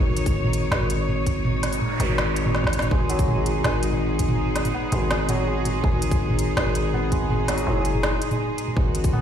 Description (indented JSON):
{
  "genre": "half-time drum and bass",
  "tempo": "164 BPM",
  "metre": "4/4",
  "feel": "half-time",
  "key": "G# minor",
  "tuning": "A4 = 440 Hz",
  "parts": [
    { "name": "bright chamber cello section", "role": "sustained chords", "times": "0.0-9.2 s", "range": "G#3 to C#5", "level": "-28 LUFS", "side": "left 1 dB", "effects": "sidechain pumping" },
    { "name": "growling 808-style bass", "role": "bass", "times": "0.0-9.2 s", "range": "F#1 to G#1", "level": "-24 LUFS", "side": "equal", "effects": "none" },
    { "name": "organic electronic drum kit", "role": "drums", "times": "0.1-9.2 s", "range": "hi-hat, snare drum, toms", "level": "-26 LUFS", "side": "right 1 dB", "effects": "none" },
    { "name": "electronic kick drum", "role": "drums", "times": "0.3-9.1 s", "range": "none", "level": "-22 LUFS", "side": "equal", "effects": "none" },
    { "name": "noise sweep", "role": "sound effects", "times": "1.7-2.9 s", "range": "none", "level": "-33 LUFS", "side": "right 4 dB", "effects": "none" },
    { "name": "santur", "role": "arpeggios", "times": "2.9-9.2 s", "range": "F#3 to B3", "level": "-29 LUFS", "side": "equal", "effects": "vintage 12-bit sampler grit, digital delay" }
  ],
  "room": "light reverb, digital ambience",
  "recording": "played on a big sound system in a bare room, large studio reverb",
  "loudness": "-20 LUFS",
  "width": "side -9 dB against mid",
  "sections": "0.0-9.2 A section",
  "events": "noise sweep 1.7-2.9; drum fill 2.5-2.9",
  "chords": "0.0 G#m"
}